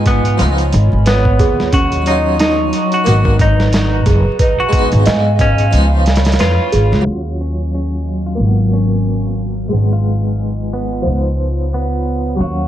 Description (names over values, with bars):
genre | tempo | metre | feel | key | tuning
trip hop | 90 BPM | 4/4 | swing 57% on 16ths | unclear | A4 = 439 Hz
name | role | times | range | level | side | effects
harpsichord | accompaniment | 0.0-12.7 s | F3 to F5 | -21 LUFS | equal | tremolo, low-pass filter, tape echo
warbly tape-like pad | sustained chords | 0.0-12.7 s | Gb3 to Db6 | -22 LUFS | equal | chorus, built-in reverb, vintage 12-bit sampler grit
small celesta | arpeggios | 0.0-7.1 s | Db4 to Eb5 | -21 LUFS | right 3 dB | dub echo
upright bass | bass | 0.0-12.7 s | Gb1 to Ab2 | -15 LUFS | equal | none
semi-hollow electric guitar | melody | 0.1-12.7 s | Cb4 to Gb4 | -21 LUFS | equal | spring reverb, tape echo
trip hop sampler-style drum kit | drums | 0.1-7.1 s | hi-hat, kick drum, snare drum | -17 LUFS | equal | tape echo
room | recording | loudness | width
small room ambience | echo-heavy mix, vinyl crackle, low-pass filter | -12 LUFS | side -12 dB against mid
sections
0.0-7.1 A section; 7.1-12.7 B section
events
kick drops out 5.7-7.1; filter sweep on harpsichord 7.1-12.7; filter sweep on ambient pad 7.1-12.7; filter sweep 7.1-12.7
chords
0.4 Db7; 1.7 Ebm7; 3.1 Abm9; 4.4 Fm7b5/Ab; 5.7 Db7; 7.1 Ebm7; 8.4 Abm9; 9.7 Fm7b5/Ab; 11.1 Db7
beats
0.39 1.06 | 1.72 2.39 3.06 3.72 | 4.39 5.06 5.72 6.39 | 7.06 7.72 8.39 9.06 | 9.72 10.39 11.06 11.72 | 12.39